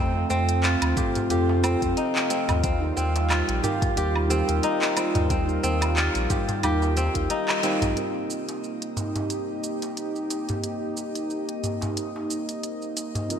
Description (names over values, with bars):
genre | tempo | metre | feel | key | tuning
organic downtempo | 90 BPM | 4/4 | swing 56% on 16ths | unclear | A4 = 440 Hz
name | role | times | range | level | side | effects
muted felt-like synth keys | accompaniment | 0.0-13.4 s | C4 to G5 | -30 LUFS | right 2 dB | chorus, sidechain pumping, digital delay, shimmer reverb
warm analog pad | sustained chords | 0.0-13.4 s | G3 to F5 | -30 LUFS | equal | chorus, sidechain pumping, shimmer reverb
kora | arpeggios | 0.0-9.4 s | C4 to G4 | -28 LUFS | left 1 dB | digital delay, shimmer reverb
warm sub bass | bass | 0.0-7.9 s | Bb1 to F2 | -25 LUFS | left 1 dB | sidechain pumping
organic electronic drum kit | drums | 0.3-13.4 s | cabasa, handclaps, hi-hat, woodblock | -30 LUFS | right 1 dB | gated reverb
darbuka | percussion | 0.3-13.3 s | none | -32 LUFS | equal | none
electronic kick drum | drums | 1.0-7.3 s | none | -27 LUFS | left 1 dB | none
room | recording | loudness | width
moderate lush hall reverb, RT60 2.1 s | bright 1980s-style digital production | -22 LUFS | side -8 dB against mid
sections
0.0-8.0 A section; 8.0-13.4 B section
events
band accent 7.5-7.8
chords
0.0 F; 2.6 Ebadd9